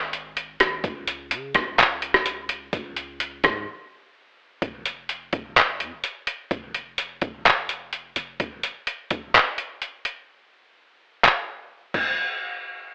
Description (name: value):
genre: hip hop, atmospheric cloud-rap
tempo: 127 BPM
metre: 4/4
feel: half-time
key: unclear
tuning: A4 = 440 Hz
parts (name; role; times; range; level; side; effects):
- clean 808-style bass; bass; 0.0-8.4 s; F1 to Db3; -36 LUFS; equal; none
- trip hop sampler-style drum kit; drums; 0.1-12.1 s; crash cymbal, handclaps, hi-hat, kick drum, rim click; -20 LUFS; equal; overdrive
room: light reverb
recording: telephone sound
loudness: -22 LUFS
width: side -34 dB against mid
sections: 0.0-4.6 A section; 4.6-12.2 B section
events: break 3.7-4.6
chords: none